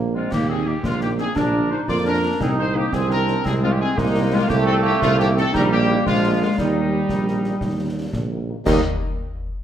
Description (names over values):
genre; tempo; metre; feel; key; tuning
military-style march for wind band; 115 BPM (dotted quarters); 6/8; straight; Eb major; A4 = 440 Hz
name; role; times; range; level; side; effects
dark French horn section; accompaniment; 0.0-8.8 s; Bb2 to Eb4; -31 LUFS; left 5 dB; none
warm trombone section; sustained chords; 0.0-8.8 s; F3 to Eb4; -24 LUFS; right 3 dB; none
warm tuba; bass; 0.0-8.8 s; Bb1 to F2; -22 LUFS; right 3 dB; none
mellow trumpet section; melody; 0.1-8.8 s; Eb4 to D5; -26 LUFS; left 1 dB; none
mellow woodwind section; second line; 0.1-8.8 s; G3 to Eb5; -24 LUFS; left 2 dB; none
concert snare drum, clash cymbals and concert bass drum; drums; 0.3-8.9 s; none; -28 LUFS; left 1 dB; none
room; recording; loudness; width
wet recital hall reverb, RT60 1.4 s; none; -18 LUFS; side -10 dB against mid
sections
0.0-8.7 A section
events
none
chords
0.3 Eb5; 1.4 Bb; 2.4 Ab/C; 4.5 F7/C; 5.5 Eb/Bb; 6.1 Bb7; 6.6 Eb